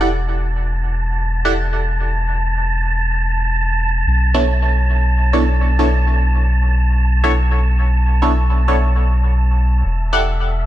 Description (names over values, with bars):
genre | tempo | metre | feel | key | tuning
drum and bass | free time | none | none | unclear | A4 = 440 Hz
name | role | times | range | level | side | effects
band-passed chord stab | stabs | 0.0-1.5, 4.3-10.2 s | B3 to F#5 | -21 LUFS | right 1 dB | phaser, wide subtle chorus, dub echo
soft dub sub bass | bass | 0.0-10.7 s | E1 to B1 | -16 LUFS | equal | none
wind-like tuned noise texture | texture | 0.0-10.7 s | E5 to A5 | -23 LUFS | right 2 dB | built-in reverb
room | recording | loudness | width
little or no reverb | none | -14 LUFS | side -13 dB against mid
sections
0.0-10.7 A section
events
none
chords
0.0 Esus4; 4.1 Bm11; 9.8 Em11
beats
free time